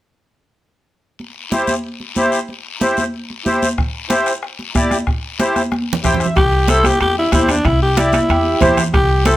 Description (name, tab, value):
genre	latin, cumbia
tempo	186 BPM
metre	4/4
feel	straight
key	C major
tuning	A4 = 441 Hz
part	congas	percussion	1.2-9.4 s	none	-21 LUFS	right 1 dB	none
part	guiro	percussion	1.2-9.4 s	none	-28 LUFS	left 7 dB	none
part	accordion	accompaniment	1.5-9.4 s	E4 to G5	-17 LUFS	equal	light tremolo tuning
part	bombo	percussion	3.8-9.4 s	none	-20 LUFS	equal	none
part	raspy alto saxophone	melody	6.4-9.4 s	D4 to A4	-15 LUFS	left 1 dB	none
part	upright bass	bass	6.4-9.4 s	C2 to E2	-18 LUFS	equal	none
part	timbales	percussion	6.4-9.4 s	none	-26 LUFS	right 6 dB	none
part	mellow accordion	second line	8.3-8.8 s	G4 to C5	-20 LUFS	right 4 dB	none
room	light reverb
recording	none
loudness	-14 LUFS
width	side -15 dB against mid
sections	1.2-6.4 A section; 6.4-9.4 B section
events	drum fill 5.7-6.4; accordion fill 5.9-6.4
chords	1.2 C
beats	| 1.20 1.52 1.84 2.17 | 2.49 2.81 3.14 3.46 | 3.78 4.10 4.43 4.75 | 5.07 5.39 5.72 6.04 | 6.36 6.68 7.00 7.33 | 7.65 7.97 8.29 8.61 | 8.94 9.26